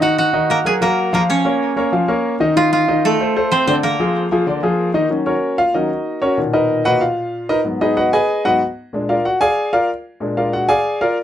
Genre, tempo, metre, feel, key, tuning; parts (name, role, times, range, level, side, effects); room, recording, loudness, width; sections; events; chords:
latin; 188 BPM; 4/4; straight; Eb minor; A4 = 440 Hz
koto; melody; 0.0-6.6 s; A3 to Ab5; -18 LUFS; right 2 dB; tape echo
clear grand piano; accompaniment; 0.0-11.2 s; Ab2 to Ab5; -16 LUFS; left 1 dB
light reverb; dry, close 1970s-style studio recording; -15 LUFS; side -11 dB against mid
0.0-5.1 A section; 5.1-11.2 B section
grand piano solo 5.1-11.2
0.0 Ebm; 1.3 Bbmadd11; 2.6 F7; 3.8 Bb7; 5.1 Ebm7; 6.4 Bmaj7; 7.7 Abm7; 8.9 Bb7